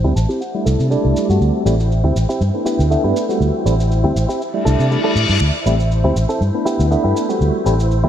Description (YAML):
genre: filtered disco house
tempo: 120 BPM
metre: 4/4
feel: swing 54% on 16ths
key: D mixolydian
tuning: A4 = 440 Hz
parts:
  - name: bell-like tine electric piano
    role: accompaniment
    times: 0.0-8.1 s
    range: G3 to F#4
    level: -20 LUFS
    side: equal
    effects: medium stereo tremolo, phaser, low-pass filter
  - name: string machine, full ensemble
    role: sustained chords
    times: 0.0-8.1 s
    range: E4 to G6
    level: -26 LUFS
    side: equal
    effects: ensemble chorus, low-pass filter
  - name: direct-recorded clean electric guitar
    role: riff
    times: 0.0-8.1 s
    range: B3 to A5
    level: -23 LUFS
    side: right 1 dB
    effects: low-pass filter
  - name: fingered electric bass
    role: bass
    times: 0.0-8.1 s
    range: A1 to C3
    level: -16 LUFS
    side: equal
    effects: tube saturation, low-pass filter
  - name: shaker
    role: drums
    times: 0.2-8.0 s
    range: none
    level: -36 LUFS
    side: right 1 dB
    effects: overdrive, low-pass filter on perc, low-pass filter on room
  - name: reverse cymbal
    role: sound effects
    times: 4.7-5.4 s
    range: none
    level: -22 LUFS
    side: left 4 dB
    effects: none
room: moderate lush hall reverb, RT60 1.8 s, digital ambience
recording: bright 1980s-style digital production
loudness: -14 LUFS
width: side -10 dB against mid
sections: 0.0-8.1 A section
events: clean electric guitar fill 0.0-1.4; filter sweep 0.0-8.1; reverse cymbal 4.7-5.4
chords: 0.4 C69; 1.4 D9sus4; 2.4 G6; 3.4 D9sus4; 4.4 C69; 5.4 D9sus4; 6.4 G6; 7.4 D9sus4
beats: 0.41 0.91 | 1.41 1.91 2.41 2.91 | 3.41 3.91 4.41 4.91 | 5.41 5.91 6.41 6.91 | 7.41 7.91